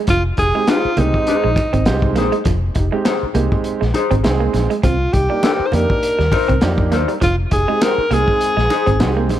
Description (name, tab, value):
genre	funk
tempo	101 BPM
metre	4/4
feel	swing 56% on 16ths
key	F dorian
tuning	A4 = 440 Hz
part	electric guitar through a small old amp	riff	0.0-9.3 s	F3 to C4	-24 LUFS	right 7 dB	tremolo
part	breathy alto saxophone	melody	0.1-9.3 s	Eb4 to C5	-19 LUFS	equal	analog delay
part	vintage muted fingered electric bass	bass	0.1-9.4 s	F1 to F2	-19 LUFS	equal	tube saturation
part	crunchy breakbeat drum kit	drums	0.1-9.4 s	hi-hat, kick drum, snare drum	-20 LUFS	equal	none
part	congas	percussion	0.1-9.4 s	none	-27 LUFS	right 3 dB	none
part	warm upright piano	stabs	0.4-9.4 s	Ab3 to Ab4	-24 LUFS	right 4 dB	none
part	mellow electric guitar	accompaniment	0.7-8.9 s	Eb4 to C5	-22 LUFS	left 6 dB	warbly pitch drift
room	light reverb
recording	none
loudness	-14 LUFS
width	side -12 dB against mid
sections	0.0-9.4 A section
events	none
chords	0.0 Fm7; 4.8 Cm7; 7.2 Fm7